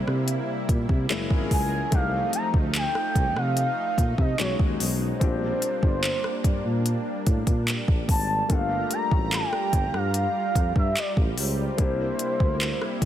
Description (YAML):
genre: contemporary R&B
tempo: 73 BPM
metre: 4/4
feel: straight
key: unclear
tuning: A4 = 441 Hz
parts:
  - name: gliding portamento lead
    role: melody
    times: 0.0-13.1 s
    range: C5 to Bb5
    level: -28 LUFS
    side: right 1 dB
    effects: chorus, digital delay
  - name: warm grand piano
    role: accompaniment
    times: 0.0-13.1 s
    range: G3 to G4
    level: -34 LUFS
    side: left 7 dB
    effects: none
  - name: lush unison pad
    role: sustained chords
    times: 0.0-13.1 s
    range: B2 to Bb5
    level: -32 LUFS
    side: equal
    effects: chorus
  - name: mellow tuba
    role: bass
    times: 0.0-13.1 s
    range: F#1 to C3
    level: -28 LUFS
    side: equal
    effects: none
  - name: smooth R&B drum kit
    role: drums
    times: 0.1-13.1 s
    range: handclaps, hi-hat, kick drum, rim click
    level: -24 LUFS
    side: equal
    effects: overdrive
room: little or no reverb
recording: dense, heavily limited modern master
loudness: -22 LUFS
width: side -11 dB against mid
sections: 0.0-13.1 A section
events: none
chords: 0.0 C7; 1.1 F#9; 1.9 F7/C; 4.4 B6; 5.2 Bb6; 8.5 Gm9; 11.8 C7